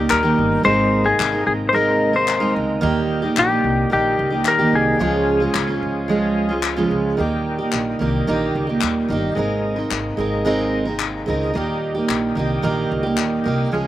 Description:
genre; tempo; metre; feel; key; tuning
acoustic pop; 110 BPM; 4/4; straight; unclear; A4 = 439 Hz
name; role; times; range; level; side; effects
clean lap steel guitar; melody; 0.0-6.6 s; G4 to C5; -19 LUFS; left 3 dB; slapback echo
picked steel-string acoustic guitar; accompaniment; 0.0-13.9 s; Db3 to Bb4; -20 LUFS; right 3 dB; slapback echo
overdriven tonewheel organ; sustained chords; 0.0-13.9 s; Bb2 to Ab4; -27 LUFS; left 2 dB; chorus vibrato, slow rotary speaker
upright bass; bass; 0.0-13.9 s; G1 to Eb2; -26 LUFS; left 1 dB; none
group handclap; percussion; 0.1-13.3 s; none; -25 LUFS; left 9 dB; none
room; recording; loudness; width
little or no reverb; recorded outdoors, with no room sound; -17 LUFS; side -13 dB against mid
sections
0.0-7.2 A section; 7.2-13.9 B section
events
none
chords
0.0 Eb; 0.6 Abadd9; 2.8 Eb; 5.0 Db; 7.2 Eb; 9.4 Abadd9; 11.5 Eb

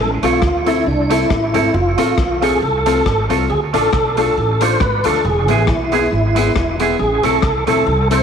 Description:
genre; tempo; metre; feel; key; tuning
ska; 137 BPM; 4/4; swing 55% on 8ths; A harmonic minor; A4 = 442 Hz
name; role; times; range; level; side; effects
mellow tonewheel organ; melody; 0.0-8.2 s; D4 to C5; -18 LUFS; right 1 dB; chorus vibrato, fast rotary speaker
upright bass; bass; 0.0-8.2 s; E1 to D2; -20 LUFS; right 1 dB; none
clean electric guitar; accompaniment; 0.2-8.2 s; G#3 to A4; -21 LUFS; right 11 dB; wide subtle chorus, tape echo
dark upright piano; stabs; 0.2-8.2 s; B3 to A4; -21 LUFS; left 7 dB; none
raw garage drum kit; drums; 0.2-8.2 s; hi-hat, kick drum, rim click; -23 LUFS; left 2 dB; none
room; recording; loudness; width
moderate echo chamber reverb, RT60 1.4 s, studio ambience; 1960s-style stereo with parts hard left and right; -13 LUFS; side -7 dB against mid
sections
0.0-8.2 A section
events
none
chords
0.0 Am; 1.7 F; 3.5 Dm; 5.2 E; 7.0 Am

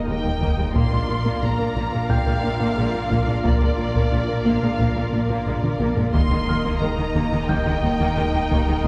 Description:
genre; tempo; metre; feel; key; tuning
cinematic, hybrid orchestral and electronic film score; 89 BPM; 4/4; straight; unclear; A4 = 440 Hz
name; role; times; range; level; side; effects
warm studio violin section; second line; 0.0-8.9 s; Bb4 to Eb5; -34 LUFS; equal; none
warm studio viola section; accompaniment; 0.0-8.9 s; Ab3 to F4; -31 LUFS; equal; none
warm analog pad; sustained chords; 0.0-8.9 s; Bb3 to F5; -30 LUFS; equal; chorus
pure sine sub bass; bass; 0.0-8.9 s; Eb1 to Bb1; -33 LUFS; equal; none
clear concert grand piano; texture; 0.0-8.9 s; G5 to G6; -40 LUFS; equal; none
dark symphonic violin section; melody; 0.1-8.9 s; D5 to C6; -32 LUFS; equal; none
soft round pluck; arpeggios; 0.1-8.9 s; Eb3 to Bb4; -34 LUFS; equal; none
plucky analog bass; riff; 0.1-8.9 s; Eb2 to Bb3; -29 LUFS; equal; none
clear symphonic double bass section; bass; 0.1-8.9 s; Bb1 to Eb2; -32 LUFS; equal; none
rich symphonic cello section; bass; 0.1-8.9 s; Eb2 to Eb3; -32 LUFS; equal; none
taiko ensemble; drums; 0.4-8.9 s; none; -28 LUFS; equal; none
room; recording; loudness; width
wet scoring stage reverb, RT60 1.9 s; heard from further back in the room; -21 LUFS; mono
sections
0.0-8.9 A section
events
drum fill 5.5-6.1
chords
0.0 Eb; 0.8 Bb; 6.1 Eb

